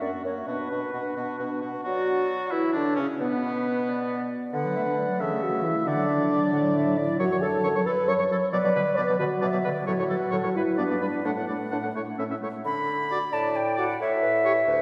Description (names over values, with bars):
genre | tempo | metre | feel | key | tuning
quick classical-period movement for wind quintet | 89 BPM (dotted quarters) | 6/8 | straight | D major from 7.2 s | A4 = 440 Hz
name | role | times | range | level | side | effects
concert flute | melody | 0.0-14.8 s | A4 to B5 | -33 LUFS | equal | none
warm oboe | second line | 0.0-14.5 s | B3 to F#5 | -34 LUFS | equal | none
warm French horn | accompaniment | 0.0-14.5 s | A3 to D5 | -30 LUFS | equal | none
warm clarinet | accompaniment | 0.0-14.8 s | D3 to D5 | -33 LUFS | equal | none
warm bassoon | bass | 0.0-14.8 s | D2 to F#3 | -34 LUFS | equal | none
room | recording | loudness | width
wet church reverb, RT60 2.7 s | none | -26 LUFS | mono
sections
0.0-1.9 A section; 1.9-12.6 A section; 12.6-14.8 B section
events
none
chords
0.5 Bm; 1.9 D/F#; 2.5 C#m; 3.2 Bm; 4.5 D; 5.2 A/C#; 5.9 D; 7.2 F#m; 8.5 Bm; 9.9 F#m/A; 10.6 G; 11.3 D/A; 12.0 A; 12.6 D5; 14.0 A